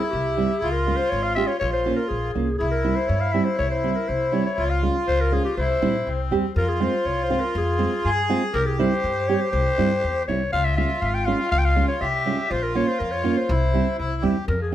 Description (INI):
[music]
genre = klezmer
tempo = 121 BPM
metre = 2/4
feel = straight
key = C phrygian dominant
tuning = A4 = 440 Hz
[part]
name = growling clarinet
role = melody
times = 0.0-14.7 s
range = G4 to G5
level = -25 LUFS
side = left 2 dB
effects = tape echo
[part]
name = accordion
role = second line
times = 0.0-14.5 s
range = C4 to Ab4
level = -27 LUFS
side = equal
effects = none
[part]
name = upright bass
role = bass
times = 0.1-14.7 s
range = Ab1 to G2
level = -25 LUFS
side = left 1 dB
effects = none
[part]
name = nylon-string guitar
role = accompaniment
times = 0.4-14.7 s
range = G3 to G4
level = -24 LUFS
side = right 4 dB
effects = none
[sound]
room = moderate studio reverb, RT60 0.6 s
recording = none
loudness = -20 LUFS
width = side -12 dB against mid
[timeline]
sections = 0.0-6.6 A section; 6.6-14.5 B section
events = none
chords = 0.0 C; 0.6 Db; 1.6 Bbm; 2.6 C; 4.6 Db; 5.6 C; 6.6 Fm; 8.5 C; 10.5 Db; 12.5 Bbm; 13.5 C